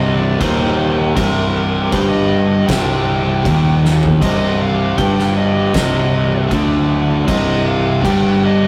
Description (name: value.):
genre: stoner and doom metal.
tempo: 78 BPM.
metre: 4/4.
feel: straight.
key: C minor.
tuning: A4 = 439 Hz.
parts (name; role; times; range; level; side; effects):
fuzz lead guitar; melody; 0.0-8.7 s; Bb4 to G5; -25 LUFS; equal; distortion, tape echo.
fuzz guitar; riff; 0.0-8.7 s; C2 to G3; -18 LUFS; equal; distortion.
thick fuzz guitar; riff; 0.0-8.7 s; C2 to G3; -25 LUFS; equal; none.
fuzz fingered electric bass; bass; 0.0-8.7 s; C1 to G1; -24 LUFS; equal; overdrive.
oversized low-tuned drum kit; drums; 0.4-8.2 s; crash cymbal, kick drum, snare drum, toms; -23 LUFS; equal; none.
room: light reverb.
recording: rough rehearsal-room recording, tube saturation.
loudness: -15 LUFS.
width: mono.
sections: 0.0-8.7 A section.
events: drum fill 3.8-4.2.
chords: 0.0 Cm.